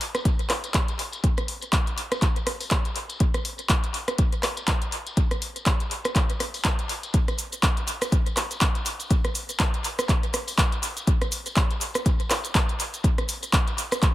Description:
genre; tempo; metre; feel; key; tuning
house; 122 BPM; 4/4; swing 57% on 16ths; none; none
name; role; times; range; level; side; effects
punchy analog drum machine; drums; 0.0-14.1 s; handclaps, hi-hat, rim click, shaker; -26 LUFS; equal; sidechain pumping on hats, sidechain pumping on perc, tape echo
tambourine; percussion; 0.2-14.1 s; none; -40 LUFS; left 3 dB; sidechain pumping on perc, low-pass filter on perc, tape echo
electronic kick drum; drums; 0.3-14.1 s; none; -23 LUFS; equal; none
room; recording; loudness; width
light reverb; echo-heavy mix; -22 LUFS; side -15 dB against mid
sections
0.0-14.1 A section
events
none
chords
none

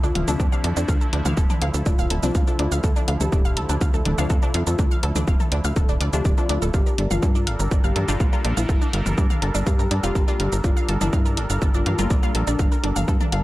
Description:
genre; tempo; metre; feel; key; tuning
melodic techno; 123 BPM; 4/4; straight; D minor; A4 = 437 Hz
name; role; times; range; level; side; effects
soft octave-layered synth lead; melody; 0.0-12.8 s; D4 to A4; -31 LUFS; left 2 dB; chorus, tremolo, cassette tape, sidechain pumping, dub echo
sweeping resonant pad; sustained chords; 0.0-13.4 s; D3 to Bb4; -32 LUFS; right 1 dB; chorus, sidechain pumping
wide unison pluck; arpeggios; 0.0-13.4 s; D4 to F6; -30 LUFS; right 1 dB; phaser, sidechain pumping, dub echo
tight sequencer bass; bass; 0.0-13.4 s; D1 to G2; -23 LUFS; equal; tube saturation, sidechain pumping
house drum kit; drums; 0.0-13.4 s; hi-hat, shaker, toms; -30 LUFS; equal; none
filtered dub chord stab; stabs; 0.3-12.4 s; Bb2 to F4; -32 LUFS; left 4 dB; chorus, sidechain pumping, dub echo
electronic kick drum; drums; 0.4-13.2 s; none; -20 LUFS; equal; overdrive
room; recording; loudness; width
digital ambience; echo-heavy mix; -19 LUFS; side -17 dB against mid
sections
0.0-13.4 A section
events
none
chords
0.0 Dm7; 6.7 Gm7

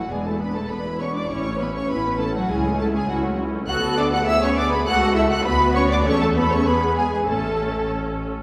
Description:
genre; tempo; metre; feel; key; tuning
quick classical-period movement for string orchestra; 100 BPM; 2/4; straight; A major; A4 = 440 Hz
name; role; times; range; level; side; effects
warm symphonic violin section; melody; 0.0-7.9 s; F#5 to F#6; -28 LUFS; equal; none
rich symphonic violin section; second line; 0.0-7.9 s; F#4 to F#5; -29 LUFS; equal; none
rich symphonic viola section; accompaniment; 0.0-8.3 s; G#3 to A4; -28 LUFS; equal; none
bright symphonic double bass section; bass; 0.0-8.3 s; E1 to E2; -28 LUFS; equal; none
rich symphonic cello section; bass; 0.1-7.9 s; F#3 to F#4; -29 LUFS; equal; none
room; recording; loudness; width
wet scoring stage reverb, RT60 1.6 s; heard from further back in the room; -21 LUFS; mono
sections
0.0-8.4 A section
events
none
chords
0.1 E7; 1.3 A; 2.5 A/C#; 3.7 Bm7/D; 4.3 E7/D; 4.9 A/C#; 5.5 Bm/D; 6.1 A/E; 6.7 E; 7.3 A

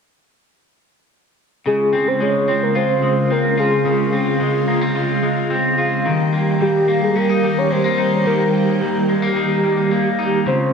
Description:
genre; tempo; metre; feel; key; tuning
dream pop; 109 BPM; 4/4; straight; Eb mixolydian; A4 = 441 Hz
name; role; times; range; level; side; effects
soft octave-layered synth lead; melody; 1.7-10.7 s; G4 to Db5; -20 LUFS; equal; chorus, tremolo, analog delay
ensemble organ-string; sustained chords; 1.7-10.7 s; Db3 to G4; -19 LUFS; right 1 dB; ensemble chorus
electric guitar at the edge of break-up; arpeggios; 1.7-10.7 s; Db3 to F4; -20 LUFS; left 2 dB; lush chorus, analog delay
room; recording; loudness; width
wet spring reverb, RT60 1.3 s, digital ambience; echo-heavy mix; -15 LUFS; side -6 dB against mid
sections
1.7-10.7 A section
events
none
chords
1.7 Dbmaj7; 6.1 Eb

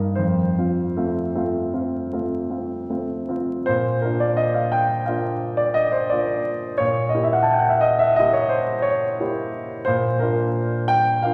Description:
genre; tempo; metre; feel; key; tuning
classical, romantic nocturne for solo piano; 49-61 BPM (dotted quarters); 9/8; rubato; Bb major; A4 = 440 Hz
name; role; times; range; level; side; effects
warm grand piano; solo; 0.0-11.3 s; F2 to A5; -22 LUFS; equal; none
room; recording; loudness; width
wet concert hall reverb, RT60 2.1 s; vinyl crackle; -22 LUFS; mono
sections
0.0-3.7 A section; 3.7-11.3 B section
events
none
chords
0.2 F; 3.7 Bb; 6.8 Bbdim7; 9.9 Bb

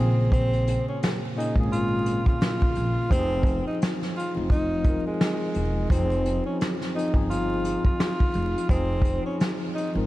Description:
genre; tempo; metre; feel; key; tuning
lo-fi hip hop; 86 BPM; 4/4; swing 59% on 16ths; F minor; A4 = 440 Hz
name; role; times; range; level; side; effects
breathy tenor saxophone; melody; 0.0-9.9 s; Ab3 to F4; -29 LUFS; equal; tape echo
tine electric piano; accompaniment; 0.0-10.1 s; Bb2 to Bb4; -29 LUFS; left 1 dB; medium stereo tremolo, cassette tape
upright bass; bass; 0.0-10.1 s; E1 to Bb1; -27 LUFS; equal; none
vintage brush drum kit; drums; 0.3-9.9 s; hi-hat, kick drum, snare drum; -25 LUFS; equal; vintage 12-bit sampler grit
room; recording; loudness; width
light reverb; vinyl crackle; -22 LUFS; side -16 dB against mid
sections
0.0-5.9 A section; 5.9-10.1 B section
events
none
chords
0.0 Bbm7; 3.1 Fm7

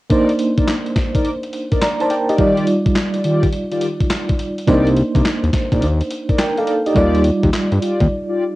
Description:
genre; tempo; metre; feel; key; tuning
R&B, new jack swing; 105 BPM; 4/4; swing 66% on 16ths; C minor; A4 = 440 Hz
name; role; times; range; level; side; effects
FM electric piano with tremolo; accompaniment; 0.1-8.6 s; G3 to Bb5; -18 LUFS; right 1 dB; cassette tape
mellow synth brass; stabs; 0.1-8.4 s; Eb3 to D5; -21 LUFS; left 1 dB; chorus, cassette tape, analog delay
dusty soul sampler-style drum kit; drums; 0.1-8.1 s; handclaps, hi-hat, kick drum, snare drum; -20 LUFS; equal; cassette tape
fat analog bass; bass; 4.7-8.1 s; Bb1 to G2; -16 LUFS; equal; none
room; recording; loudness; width
moderate booth ambience, RT60 0.2 s; home recording on cassette; -15 LUFS; side -18 dB against mid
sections
0.1-8.6 A section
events
break 8.1-8.6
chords
0.1 Cm9; 2.4 Ebmaj9; 4.7 Cm9; 7.0 Ebmaj9

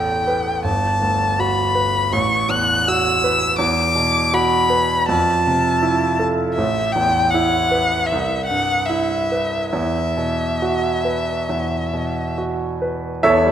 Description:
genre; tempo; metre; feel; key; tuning
classical, impressionist duo for violin and grand piano; 67-85 BPM; 4/4; rubato; E minor; A4 = 440 Hz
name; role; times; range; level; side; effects
warm violin; melody; 0.0-12.3 s; E5 to F#6; -19 LUFS; left 2 dB; none
clear concert grand piano; accompaniment; 0.0-13.5 s; G1 to E5; -20 LUFS; right 2 dB; none
room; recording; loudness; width
moderate scoring stage reverb, RT60 1.6 s; none; -16 LUFS; side -10 dB against mid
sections
0.0-13.3 A section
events
none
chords
0.0 Asus2; 0.7 Gmaj9; 2.1 Asus2; 3.6 Esus2; 5.1 Fmaj7; 6.6 Asus2; 8.1 Cmaj7; 9.7 Esus2

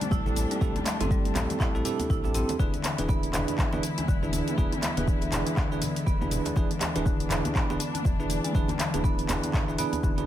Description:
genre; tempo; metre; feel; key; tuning
afro house; 121 BPM; 4/4; swing 59% on 16ths; unclear; A4 = 439 Hz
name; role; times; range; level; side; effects
muted studio string section; sustained chords; 0.0-10.3 s; C3 to E4; -36 LUFS; left 2 dB; sidechain pumping
deep house drum kit; drums; 0.0-10.3 s; handclaps, hi-hat, shaker, toms; -33 LUFS; left 1 dB; none
congas; percussion; 0.0-10.2 s; none; -39 LUFS; left 3 dB; none
marimba with medium hard mallets; arpeggios; 0.1-10.2 s; D3 to E4; -32 LUFS; left 1 dB; sidechain pumping, digital delay
warm sub bass; bass; 0.1-10.3 s; D1 to A1; -33 LUFS; equal; sidechain pumping
electronic kick drum; drums; 0.1-10.2 s; none; -27 LUFS; equal; overdrive
djembe; percussion; 0.1-10.3 s; none; -38 LUFS; right 2 dB; none
bell-like tine electric piano; stabs; 0.3-10.3 s; C4 to B4; -33 LUFS; right 4 dB; medium stereo tremolo, sidechain pumping, digital delay
room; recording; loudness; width
light reverb, small room ambience; none; -24 LUFS; side -12 dB against mid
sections
0.0-10.3 A section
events
drum fill 10.0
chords
0.0 Am7; 2.6 E7

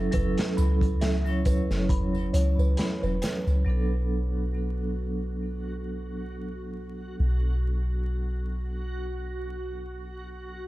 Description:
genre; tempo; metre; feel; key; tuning
trip hop; 68 BPM; 4/4; swing 56% on 16ths; B minor; A4 = 440 Hz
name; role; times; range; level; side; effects
vibraphone with hard mallets; accompaniment; 0.0-10.7 s; F#3 to C#5; -32 LUFS; right 1 dB; tremolo, tape echo
music box; arpeggios; 0.0-3.4 s; B4 to B5; -36 LUFS; right 1 dB; vintage 12-bit sampler grit, tape echo
soft 808-style bass; bass; 0.0-10.7 s; E1 to C#2; -27 LUFS; equal; tube saturation
crunchy breakbeat drum kit; drums; 0.1-3.5 s; hi-hat, kick drum, snare drum; -29 LUFS; equal; none
tambourine and triangle; percussion; 0.1-3.6 s; none; -51 LUFS; right 6 dB; none
backwards swelling texture; texture; 4.4-10.7 s; F#4; -40 LUFS; right 1 dB; built-in reverb
room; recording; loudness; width
small room ambience; dark, warm production, vinyl crackle; -25 LUFS; side -17 dB against mid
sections
0.0-3.7 A section; 3.7-10.7 B section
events
none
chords
0.0 F#m7; 3.7 Bm7

